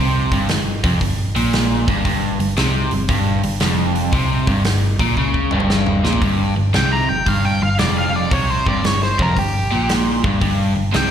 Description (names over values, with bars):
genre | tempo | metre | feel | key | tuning
blues rock power trio and southern rock | 115 BPM | 4/4 | swing 67% on 8ths | G minor | A4 = 440 Hz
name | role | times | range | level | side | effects
overdriven electric guitar | riff | 0.0-11.1 s | F2 to C#3 | -19 LUFS | equal | slapback echo
vintage muted picked electric bass | bass | 0.0-11.1 s | F1 to C#2 | -21 LUFS | equal | none
big rock drum kit | drums | 0.3-11.1 s | hi-hat, kick drum, snare drum, toms | -21 LUFS | equal | none
octave-fuzz lead guitar | melody | 6.8-11.1 s | G4 to Bb5 | -21 LUFS | equal | distortion, slapback echo, tape echo
room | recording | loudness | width
little or no reverb | live gig heard through the venue's PA, recital hall reverb | -15 LUFS | side -9 dB against mid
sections
0.0-6.2 A section; 6.2-11.1 B section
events
drum fill 5.2-6.2; lead electric guitar solo 6.2-11.1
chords
0.0 Gm